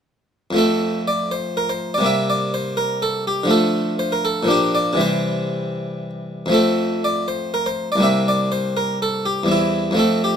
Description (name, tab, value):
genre	classical, baroque-style suite movement for harpsichord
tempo	122 BPM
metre	3/4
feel	rubato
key	F major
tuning	A4 = 442 Hz
part	harpsichord	solo	0.5-10.4 s	C2 to E5	-18 LUFS	equal	none
room	moderate studio reverb, RT60 0.8 s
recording	none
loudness	-18 LUFS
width	side -8 dB against mid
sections	0.6-10.4 A section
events	none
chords	0.6 F; 2.1 C5; 3.5 Dm; 4.5 Gm7/Bb; 5.0 C; 6.5 F; 8.0 C5; 9.5 C/E